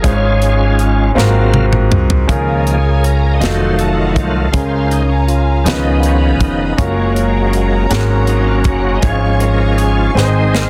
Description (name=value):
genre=slow gospel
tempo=53 BPM (dotted quarters)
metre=6/8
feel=straight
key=Db major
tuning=A4 = 439 Hz
part: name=clear baby grand piano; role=accompaniment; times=0.0-10.7 s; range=Ab2 to Db5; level=-20 LUFS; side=equal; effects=none
part: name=bright tonewheel organ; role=sustained chords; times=0.0-10.7 s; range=Db3 to F5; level=-21 LUFS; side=equal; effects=fast rotary speaker, overdrive, chorus vibrato
part: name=upright bass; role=bass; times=0.0-10.7 s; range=F1 to Db2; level=-17 LUFS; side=equal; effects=none
part: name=tight funk drum kit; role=drums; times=0.0-10.7 s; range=hi-hat, kick drum, snare drum, toms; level=-19 LUFS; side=equal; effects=none
part: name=warm symphonic string section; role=sustained chords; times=2.3-10.7 s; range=Db4 to Db6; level=-27 LUFS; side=equal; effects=none
room=studio reverb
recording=dense, heavily limited modern master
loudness=-13 LUFS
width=mono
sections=0.0-2.3 A section; 2.3-10.7 B section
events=tonewheel organ solo 0.0-2.3, 2.3-10.7; drum fill 1.2-2.3, 10.2-10.7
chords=0.0 Db/Ab; 1.2 Ab13; 2.3 Db6; 3.4 F7b9; 4.5 Bbm7/Db; 5.7 Db9; 6.8 Gbmaj7; 7.9 Ab9sus4; 9.0 Db/Ab; 10.2 Ab